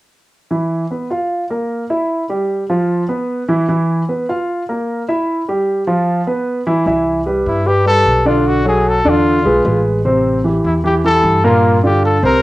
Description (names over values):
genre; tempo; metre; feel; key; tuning
Afro-Cuban jazz; 151 BPM; 4/4; straight; C major; A4 = 440 Hz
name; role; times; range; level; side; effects
warm grand piano; accompaniment; 0.5-12.4 s; Bb2 to F5; -15 LUFS; right 1 dB; cassette tape
upright bass; bass; 6.9-12.4 s; A1 to G2; -18 LUFS; equal; none
warm trumpet; melody; 7.5-12.4 s; E4 to Bb4; -15 LUFS; left 1 dB; cassette tape
room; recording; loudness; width
moderate studio reverb, RT60 0.6 s; home recording on cassette; -13 LUFS; side -18 dB against mid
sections
0.5-6.9 A section; 6.9-12.4 B section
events
none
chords
0.5 E5; 1.3 Bb5; 2.1 Fsus2; 2.9 E5; 4.5 Bb5; 5.3 Fsus2; 6.1 E5; 6.9 Cmaj7; 8.5 Bm7; 9.3 E7b9; 10.0 Am7; 11.6 Gm7